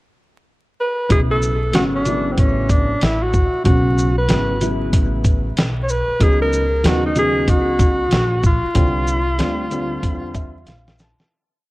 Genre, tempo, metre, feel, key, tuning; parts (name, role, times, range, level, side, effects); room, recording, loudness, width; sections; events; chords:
hip hop, jazz-hop; 94 BPM; 4/4; swing 62% on 16ths; A4 = 435 Hz
breathy alto saxophone; melody; 0.8-11.0 s; C4 to C#5; -20 LUFS; equal; analog delay
dark grand piano; accompaniment; 1.1-11.3 s; C#3 to A5; -22 LUFS; equal; analog delay
upright bass; bass; 1.1-11.2 s; G#1 to E2; -22 LUFS; equal
dusty soul sampler-style drum kit; drums; 1.1-11.3 s; hi-hat, kick drum, shaker, snare drum; -17 LUFS; equal; vintage 12-bit sampler grit
light reverb, small room reverb; echo-heavy mix, vinyl crackle, lossy compression artefacts; -15 LUFS; side -19 dB against mid
0.0-1.1 pickup bar; 1.1-11.3 head
fade-out 8.8-11.3; grand piano fill 10.0-11.3; drum fill 10.7-11.3
0.0 N.C.; 1.1 B9sus4; 6.2 C#9sus4; 8.8 C9sus4